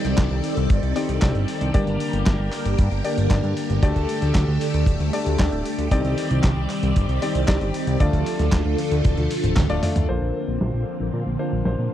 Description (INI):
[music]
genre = italo disco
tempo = 115 BPM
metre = 4/4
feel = straight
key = unclear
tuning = A4 = 443 Hz
[part]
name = phased string machine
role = sustained chords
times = 0.0-11.9 s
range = D3 to D5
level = -26 LUFS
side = equal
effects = ensemble chorus, phaser
[part]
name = clear concert grand piano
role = stabs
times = 0.0-11.9 s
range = A3 to D5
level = -28 LUFS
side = left 3 dB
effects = low-pass filter, tape echo
[part]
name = fat analog bass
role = bass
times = 0.0-11.9 s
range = D1 to Bb2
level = -23 LUFS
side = equal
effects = tube saturation
[part]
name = dusty soul sampler-style drum kit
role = drums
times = 0.0-11.8 s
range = crash cymbal, handclaps, hi-hat, snare drum, toms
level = -27 LUFS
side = equal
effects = overdrive, low-pass filter on hats, low-pass filter on cymbals, low-pass filter on snare, low-pass filter on toms, low-pass filter on room
[part]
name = kick drum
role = drums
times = 0.2-9.7 s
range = none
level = -19 LUFS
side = equal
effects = none
[sound]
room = little or no reverb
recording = dry, close 1970s-style studio recording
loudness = -19 LUFS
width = side -11 dB against mid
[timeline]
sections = 0.0-10.1 A section; 10.1-11.9 B section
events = drum fill 9.0-10.1; band accent 9.6; filter sweep on grand piano 10.1-11.9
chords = 0.0 Cmadd9; 1.7 Gm; 3.8 Dsus4; 5.9 Cmadd9; 8.0 Dm; 10.1 Bbadd9